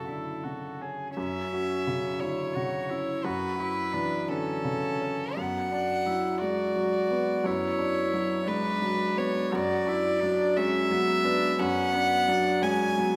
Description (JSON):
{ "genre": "neoclassical piano and strings", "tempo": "58 BPM (dotted quarters)", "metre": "6/8", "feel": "rubato", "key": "F# minor", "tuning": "A4 = 441 Hz", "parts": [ { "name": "rich violin", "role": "melody", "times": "0.0-13.2 s", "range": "A4 to G#5", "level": "-31 LUFS", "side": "equal", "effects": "none" }, { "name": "warm upright piano", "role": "accompaniment", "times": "0.0-13.2 s", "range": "F#2 to F#4", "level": "-31 LUFS", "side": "equal", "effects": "none" }, { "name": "warm cello", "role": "second line", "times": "0.1-13.2 s", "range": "B3 to G#4", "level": "-36 LUFS", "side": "equal", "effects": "none" } ], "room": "moderate scoring stage reverb, RT60 1.8 s", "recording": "none", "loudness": "-28 LUFS", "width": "mono", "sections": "0.0-1.2 A section; 1.2-13.2 A section", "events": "none", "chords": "0.0 F#m7; 5.4 G#m7b5/F#" }